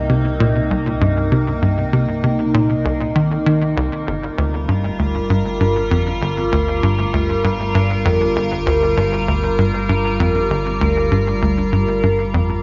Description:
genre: ambient, sequencer-driven space music.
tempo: 98 BPM.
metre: 4/4.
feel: straight.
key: unclear.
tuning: A4 = 436 Hz.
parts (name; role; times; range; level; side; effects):
evolving wavetable pad; sustained chords; 0.0-12.6 s; C3 to Bb4; -22 LUFS; equal; chorus, built-in reverb, phaser.
fat analog bass; bass; 0.0-12.6 s; C2; -29 LUFS; equal; none.
tight sequencer bass; riff; 0.1-12.6 s; G1 to Eb3; -20 LUFS; equal; analog chorus, tape echo.
room: wet plate reverb, RT60 2.4 s.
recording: nothing above 7.5 kHz.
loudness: -18 LUFS.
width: mono.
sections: 0.0-12.6 A section.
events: none.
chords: 0.0 Cm7; 4.1 Gm7.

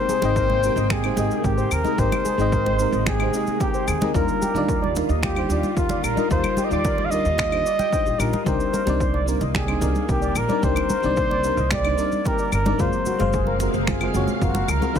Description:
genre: sunset chillout.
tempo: 111 BPM.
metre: 4/4.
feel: straight.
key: Ab lydian.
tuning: A4 = 440 Hz.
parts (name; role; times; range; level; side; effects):
warm flugelhorn; melody; 0.0-15.0 s; F4 to F5; -25 LUFS; equal; digital delay.
mellow FM electric piano; accompaniment; 0.0-15.0 s; C3 to D6; -26 LUFS; moving between left 9 dB and right 3 dB; chorus, auto-pan, digital delay.
soft string machine; sustained chords; 0.0-15.0 s; C3 to G5; -30 LUFS; equal; ensemble chorus.
steel pan; arpeggios; 0.1-15.0 s; F4 to G5; -31 LUFS; left 2 dB; digital delay.
electronic shaker, finger snaps and claves; drums; 0.1-15.0 s; none; -30 LUFS; left 1 dB; overdrive.
congas; percussion; 0.1-14.9 s; none; -30 LUFS; right 3 dB; none.
upright bass; bass; 0.2-15.0 s; Gb1 to Eb2; -25 LUFS; right 1 dB; tube saturation.
electronic kick drum; drums; 0.4-15.0 s; none; -27 LUFS; right 1 dB; overdrive.
room: light reverb, studio ambience.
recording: none.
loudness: -19 LUFS.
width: side -8 dB against mid.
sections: 0.0-15.0 A section.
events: none.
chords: 0.0 Abmaj9; 4.1 Ebmaj9; 8.5 Cm9; 12.8 Gbmaj9#11.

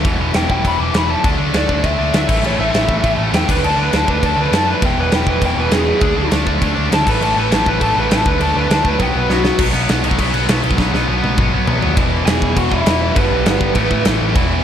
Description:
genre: punk rock.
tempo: 201 BPM.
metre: 4/4.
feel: straight.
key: unclear.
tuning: A4 = 438 Hz.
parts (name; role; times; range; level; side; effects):
tight distorted guitar; riff; 0.0-14.6 s; E2 to D4; -19 LUFS; equal; distortion.
overdriven picked electric bass; bass; 0.0-14.6 s; E1 to A2; -20 LUFS; equal; none.
big rock drum kit; drums; 0.0-14.4 s; crash cymbal, kick drum, snare drum, toms; -18 LUFS; equal; none.
lead guitar through a small cranked amp; melody; 0.4-9.6, 12.3-14.0 s; B3 to D6; -19 LUFS; equal; overdrive.
room: light reverb.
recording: none.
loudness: -13 LUFS.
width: side -9 dB against mid.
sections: 0.1-9.6 A section; 9.6-12.0 B section; 12.0-14.6 C section.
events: lead electric guitar solo 0.1-9.6; drum fill 9.3, 10.8-12.0.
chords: 0.1 E5; 1.2 D5; 2.3 A5; 3.5 D; 4.8 E; 6.0 D5; 7.1 A5; 8.3 D5; 9.0 B5; 12.0 E; 13.2 G; 13.8 A5.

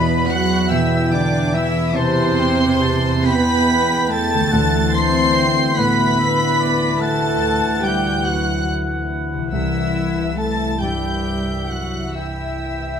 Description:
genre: cinematic, emotional film score for orchestra.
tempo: 47 BPM (dotted quarters).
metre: 6/8.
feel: rubato.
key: unclear.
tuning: A4 = 440 Hz.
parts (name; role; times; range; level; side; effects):
warm studio violin section; melody; 0.0-13.0 s; B5 to C7; -26 LUFS; right 2 dB; none.
clear oboe; second line; 0.0-13.0 s; D5 to B5; -27 LUFS; right 1 dB; none.
rich studio violin section; second line; 0.0-13.0 s; B4 to C6; -27 LUFS; left 4 dB; none.
silver concert flute; second line; 0.0-13.0 s; B4 to C6; -25 LUFS; left 2 dB; none.
dark concert grand piano; accompaniment; 0.0-13.0 s; C2 to B2; -26 LUFS; right 1 dB; none.
rich studio viola section; accompaniment; 0.0-13.0 s; C3 to C5; -26 LUFS; right 2 dB; none.
dark French horn section; sustained chords; 0.0-13.0 s; E3 to E4; -26 LUFS; left 6 dB; none.
concert harp; arpeggios; 0.0-13.0 s; C3 to C5; -28 LUFS; left 11 dB; none.
dark studio cello section; bass; 0.0-13.0 s; B2 to C4; -23 LUFS; right 2 dB; none.
dark studio double bass section; bass; 0.0-13.0 s; C2 to E2; -25 LUFS; right 2 dB; none.
room: moderate scoring stage reverb, RT60 1.8 s.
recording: close, detailed microphones.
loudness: -16 LUFS.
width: side -7 dB against mid.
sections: 0.0-13.0 A section.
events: none.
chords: 0.0 Em; 4.5 Dadd9; 9.5 C.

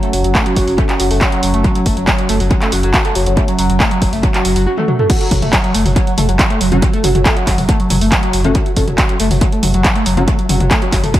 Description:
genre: driving peak-time techno.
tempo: 139 BPM.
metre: 4/4.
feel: straight.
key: F# minor.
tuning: A4 = 440 Hz.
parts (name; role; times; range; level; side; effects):
overdriven synth lead; riff; 0.0-11.2 s; F#3 to F#4; -17 LUFS; right 1 dB; distortion, phaser, lush chorus, sidechain pumping, tape echo.
analog drone; drone; 0.0-4.7 s; F#3 to C#4; -24 LUFS; right 1 dB; chorus, sidechain pumping.
punchy analog drum machine; drums; 0.0-11.2 s; crash cymbal, handclaps, hi-hat, toms; -18 LUFS; equal; sidechain pumping on hats, sidechain pumping on toms, sidechain pumping on cymbals, tape echo.
saturated sub bass; bass; 0.1-11.1 s; F#1; -18 LUFS; equal; tube saturation, sidechain pumping, low-pass filter.
electronic kick drum; drums; 0.3-11.2 s; none; -15 LUFS; equal; overdrive.
rave stab; stabs; 6.7-10.2 s; F#3 to F#4; -22 LUFS; left 2 dB; chorus, built-in reverb, cassette tape, sidechain pumping, analog delay.
room: light reverb.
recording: echo-heavy mix.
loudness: -11 LUFS.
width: side -13 dB against mid.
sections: 0.0-5.1 A section; 5.1-11.2 B section.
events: drum fill 4.8-5.1; drop 5.1-11.2.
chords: 0.0 F#5.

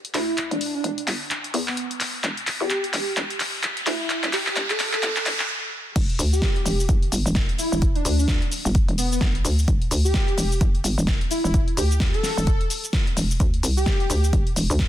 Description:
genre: bass house.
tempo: 129 BPM.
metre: 4/4.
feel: swing 59% on 16ths.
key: E minor.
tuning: A4 = 441 Hz.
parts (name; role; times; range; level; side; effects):
big-room dance drum kit; drums; 0.0-14.9 s; crash cymbal, handclaps, hi-hat, shaker, snare drum; -26 LUFS; left 1 dB; none.
riser; sound effects; 0.8-5.5 s; none; -34 LUFS; right 1 dB; none.
airy dreamy lead; melody; 0.1-14.2 s; B3 to A4; -28 LUFS; equal; chorus, digital delay.
hollow knocking FM bass; bass; 0.1-14.9 s; E1 to E2; -23 LUFS; equal; overdrive, sidechain pumping, high-pass filter.
electronic kick drum; drums; 6.0-14.9 s; none; -22 LUFS; equal; none.
room: little or no reverb.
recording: dense, heavily limited modern master, high-pass filter.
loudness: -20 LUFS.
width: side -12 dB against mid.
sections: 0.0-6.0 A section; 6.0-14.9 B section.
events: build-up 0.0-6.0; drum fill 0.0-5.5; riser 0.8-5.5; break 5.5-6.0; drop 6.0-14.9.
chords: 0.0 Em; 6.0 Em7; 13.4 Dsus2.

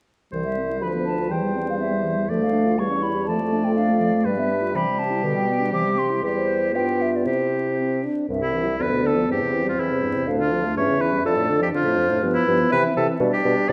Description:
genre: quick classical-period movement for wind quintet.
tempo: 122 BPM.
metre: 2/4.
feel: straight.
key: C major.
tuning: A4 = 441 Hz.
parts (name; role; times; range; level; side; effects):
warm oboe; second line; 0.3-13.7 s; E4 to D5; -29 LUFS; equal; none.
clear French horn; accompaniment; 0.3-13.7 s; F2 to D4; -29 LUFS; equal; none.
dark clarinet; accompaniment; 0.3-13.7 s; D3 to G4; -30 LUFS; equal; none.
mellow bassoon; bass; 0.3-13.7 s; C2 to C3; -28 LUFS; equal; none.
hollow concert flute; melody; 0.4-13.7 s; B4 to D6; -29 LUFS; equal; none.
room: wet recital hall reverb, RT60 1.5 s.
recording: dark, warm production, vinyl crackle.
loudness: -22 LUFS.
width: mono.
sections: 0.3-8.3 A section; 8.3-13.7 A section.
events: none.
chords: 0.3 C; 0.8 Bdim/D; 1.3 C/E; 2.3 Dm; 2.8 C#dim/E; 3.3 Dm/F; 4.3 G7; 4.8 C; 5.2 G/B; 5.7 C; 6.2 C/E; 6.7 G7; 7.3 C; 8.8 Bdim/D; 9.3 C/E; 10.3 Dm; 10.8 C#dim/E; 11.3 Dm/F; 12.2 G7; 12.7 C; 13.2 G/B.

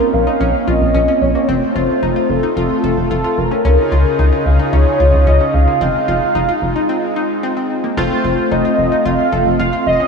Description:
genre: pop.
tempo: 111 BPM.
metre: 4/4.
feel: straight.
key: unclear.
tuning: A4 = 440 Hz.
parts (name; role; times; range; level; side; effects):
warm velvety synth lead; melody; 0.0-10.1 s; A4 to F5; -17 LUFS; equal; chorus, tape echo.
brassy analog pad; sustained chords; 0.0-10.1 s; Db3 to Ab4; -19 LUFS; right 1 dB; chorus.
analog pluck; arpeggios; 0.0-10.1 s; Bb3 to A4; -23 LUFS; left 3 dB; chorus, tape echo.
rubbery square bass; bass; 0.1-10.0 s; F1 to Db2; -16 LUFS; left 1 dB; none.
warm analog keys; accompaniment; 8.0-10.1 s; A3 to F4; -19 LUFS; equal; chorus, tremolo.
room: wet lush hall reverb, RT60 2.7 s.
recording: dreamy mix soaked in reverb.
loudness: -12 LUFS.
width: side -5 dB against mid.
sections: 0.0-8.0 A section; 8.0-10.1 B section.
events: break 6.9-8.0.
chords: 0.0 Bbmadd9; 1.5 F; 3.6 Dbadd9; 5.8 Fm7; 8.0 F.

